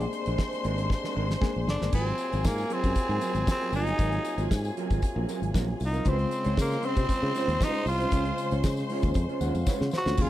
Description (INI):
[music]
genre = disco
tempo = 116 BPM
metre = 4/4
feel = straight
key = unclear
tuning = A4 = 439 Hz
[part]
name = growling tenor saxophone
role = melody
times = 0.0-10.3 s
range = Bb3 to Gb4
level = -30 LUFS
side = equal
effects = none
[part]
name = rich studio string section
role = second line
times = 0.0-10.3 s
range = Ab4 to C6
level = -36 LUFS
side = equal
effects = none
[part]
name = mellow electric guitar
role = accompaniment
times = 0.0-10.3 s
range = Gb3 to Db5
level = -35 LUFS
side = right 2 dB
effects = none
[part]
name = reed electric piano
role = accompaniment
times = 0.0-2.0, 6.0-10.3 s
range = Db3 to Ab5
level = -36 LUFS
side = left 5 dB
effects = overdrive, medium tremolo
[part]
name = warm French horn section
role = sustained chords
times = 0.0-10.3 s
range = C3 to F5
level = -38 LUFS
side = left 2 dB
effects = none
[part]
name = fingered electric bass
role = bass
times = 0.0-10.3 s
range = Gb1 to Db3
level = -29 LUFS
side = equal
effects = none
[part]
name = damped 70s drum kit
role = drums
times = 0.0-10.3 s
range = crash cymbal, hi-hat, kick drum, snare drum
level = -28 LUFS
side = equal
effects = none
[part]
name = tambourine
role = percussion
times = 1.9-10.3 s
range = none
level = -47 LUFS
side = left 14 dB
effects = none
[sound]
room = little or no reverb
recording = dry, close 1970s-style studio recording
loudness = -25 LUFS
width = side -14 dB against mid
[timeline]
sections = 0.0-1.9 A section; 1.9-10.2 B section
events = drum fill 0.9-1.9, 9.7-10.2; reed electric piano fill 1.2-1.9, 9.1-10.2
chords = 0.0 Bb9; 1.9 Ab13; 6.1 Dbmaj7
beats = 0.38 0.89 1.41 | 1.93 2.44 2.96 3.48 | 3.99 4.51 5.02 5.54 | 6.06 6.57 7.09 7.60 | 8.12 8.63 9.15 9.66 | 10.18